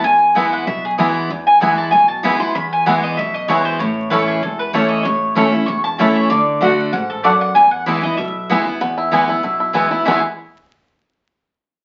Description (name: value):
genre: bluegrass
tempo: 192 BPM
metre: 4/4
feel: straight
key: E major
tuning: A4 = 440 Hz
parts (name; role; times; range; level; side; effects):
- mandolin; melody; 0.0-10.2 s; G#4 to C#6; -19 LUFS; equal; none
- picked steel-string acoustic guitar; accompaniment; 0.0-10.2 s; E2 to F#4; -21 LUFS; equal; none
- upright bass; bass; 0.0-10.2 s; E1 to E2; -36 LUFS; equal; none
- bluegrass banjo; melody; 0.4-10.2 s; G#3 to G#4; -23 LUFS; equal; none
- mandolin; stabs; 0.4-10.2 s; A3 to A5; -22 LUFS; equal; none
room: wet studio reverb, RT60 0.6 s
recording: very old 78 rpm record, vinyl crackle, nothing above 7.8 kHz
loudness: -16 LUFS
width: mono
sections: 0.0-8.8 A section; 8.8-10.1 B section; 10.1-11.3 C section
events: none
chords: 0.0 E; 3.8 A; 6.3 D; 7.6 E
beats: | 0.04 0.36 0.67 0.98 | 1.30 1.61 1.92 2.24 | 2.55 2.86 3.18 3.49 | 3.80 4.11 4.43 4.74 | 5.05 5.37 5.68 5.99 | 6.30 6.62 6.93 7.24 | 7.55 7.87 8.18 8.49 | 8.81 9.12 9.43 9.74 | 10.06